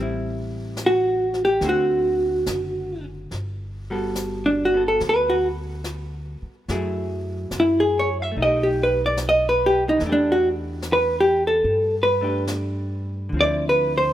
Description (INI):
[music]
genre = jazz ballad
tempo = 72 BPM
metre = 4/4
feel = swing 69% on 8ths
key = G major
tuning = A4 = 440 Hz
[part]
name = vintage hollow-body jazz guitar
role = accompaniment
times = 0.0-14.1 s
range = D3 to A4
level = -30 LUFS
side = equal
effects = none
[part]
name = upright bass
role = bass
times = 0.0-14.1 s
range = F#1 to G2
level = -30 LUFS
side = equal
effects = none
[part]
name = jazz brush drum kit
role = drums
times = 0.8-14.1 s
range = brushed snare drum, hi-hat, snare drum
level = -36 LUFS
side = left 1 dB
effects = none
[part]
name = vintage hollow-body jazz guitar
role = melody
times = 0.9-14.1 s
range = D4 to E5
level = -18 LUFS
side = equal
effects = none
[sound]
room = light reverb, small room ambience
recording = rough home demo mix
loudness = -19 LUFS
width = side -12 dB against mid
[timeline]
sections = 0.0-3.3 A section; 3.3-14.1 B section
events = hollow-body jazz guitar solo 3.3-14.1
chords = 0.0 Am7; 1.6 D7; 3.3 Gmaj9; 6.7 F#m9; 8.4 Baug7; 10.0 Em7; 13.3 Dm9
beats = 0.78 1.62 2.47 | 3.33 4.17 5.01 5.86 | 6.69 7.52 8.36 9.19 | 10.01 10.84 11.66 12.49 | 13.33